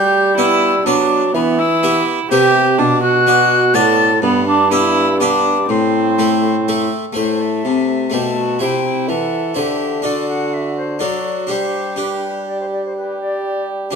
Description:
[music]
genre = classical, renaissance-style consort dance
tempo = 124 BPM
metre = 3/4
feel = straight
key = A dorian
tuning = A4 = 439 Hz
[part]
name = silver concert flute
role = melody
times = 0.0-14.0 s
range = B4 to A6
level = -20 LUFS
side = left 6 dB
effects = none
[part]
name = warm viola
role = second line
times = 0.0-13.9 s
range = B3 to A4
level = -19 LUFS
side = right 6 dB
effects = none
[part]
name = harpsichord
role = accompaniment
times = 0.0-14.0 s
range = G2 to E5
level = -19 LUFS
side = left 3 dB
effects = none
[part]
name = dark bassoon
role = bass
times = 0.0-14.0 s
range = G2 to G3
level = -19 LUFS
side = right 1 dB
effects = none
[sound]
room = moderate recital hall reverb, RT60 1.6 s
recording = close, detailed microphones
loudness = -13 LUFS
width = side -5 dB against mid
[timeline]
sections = 0.0-7.2 A section; 7.2-14.0 B section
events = none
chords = 0.0 G; 1.3 Em; 2.8 Bm; 4.2 G; 5.7 Am; 8.6 C; 10.1 D; 11.5 G

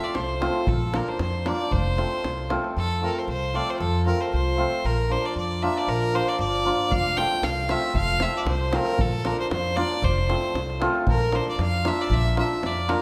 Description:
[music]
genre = balkan folk, Balkan wedding band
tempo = 116 BPM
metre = 2/4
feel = swing 53% on 16ths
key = F major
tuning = A4 = 440 Hz
[part]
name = bright fiddle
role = melody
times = 0.0-13.0 s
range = A4 to G5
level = -29 LUFS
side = equal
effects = slapback echo
[part]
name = hammered dulcimer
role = accompaniment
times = 0.0-13.0 s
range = F3 to F4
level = -29 LUFS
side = equal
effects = none
[part]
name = davul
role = percussion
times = 0.0-2.7, 6.9-13.0 s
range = none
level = -32 LUFS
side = equal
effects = none
[part]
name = upright bass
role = bass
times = 0.2-12.9 s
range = F1 to F2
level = -29 LUFS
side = equal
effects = none
[sound]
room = moderate recital hall reverb, RT60 1.4 s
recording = none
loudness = -24 LUFS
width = mono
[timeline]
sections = 0.0-2.8 A section; 2.8-11.1 A section; 11.1-13.0 B section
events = none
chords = 0.0 F; 0.7 Bb; 1.7 F; 4.8 Bb; 6.9 F; 9.0 Bb; 10.0 F; 11.1 Bb

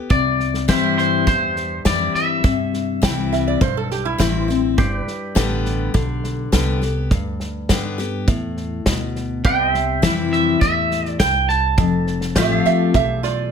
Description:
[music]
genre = honky-tonk and classic country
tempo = 103 BPM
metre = 4/4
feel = straight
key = C major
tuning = A4 = 441 Hz
[part]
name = picked steel-string acoustic guitar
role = accompaniment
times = 0.0-13.5 s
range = E2 to G4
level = -22 LUFS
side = left 6 dB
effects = none
[part]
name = twangy electric guitar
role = melody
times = 0.1-3.9, 9.5-13.2 s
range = C5 to A5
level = -20 LUFS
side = right 2 dB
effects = none
[part]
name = upright bass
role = bass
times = 0.1-13.5 s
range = F1 to G2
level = -24 LUFS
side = right 1 dB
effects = none
[part]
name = unplugged drum kit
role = drums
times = 0.1-13.3 s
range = hi-hat, kick drum, snare drum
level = -20 LUFS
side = right 1 dB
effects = none
[part]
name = pedal steel guitar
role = sustained chords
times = 0.7-13.5 s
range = G4 to F5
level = -29 LUFS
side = right 3 dB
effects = none
[part]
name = lap resonator guitar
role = second line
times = 3.0-4.8, 12.4-13.5 s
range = C4 to G5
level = -22 LUFS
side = right 10 dB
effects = none
[sound]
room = light reverb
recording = none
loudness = -17 LUFS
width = side -7 dB against mid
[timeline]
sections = 0.1-13.5 A section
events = none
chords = 0.1 C; 4.8 G; 9.4 C; 11.8 F

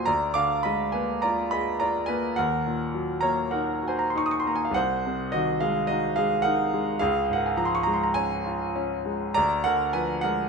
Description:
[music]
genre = classical, romantic nocturne for solo piano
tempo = 48-55 BPM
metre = 4/4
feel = rubato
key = unclear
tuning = A4 = 438 Hz
[part]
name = warm grand piano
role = solo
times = 0.0-10.5 s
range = C2 to Eb6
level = -23 LUFS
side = right 1 dB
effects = none
[sound]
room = moderate stone room reverb, RT60 1.0 s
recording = none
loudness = -23 LUFS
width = side -5 dB against mid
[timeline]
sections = 0.0-10.5 A section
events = none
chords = 0.1 Bb7/D; 2.4 Ebm; 4.8 Ab7/C; 7.0 Db; 9.4 Bb7/D

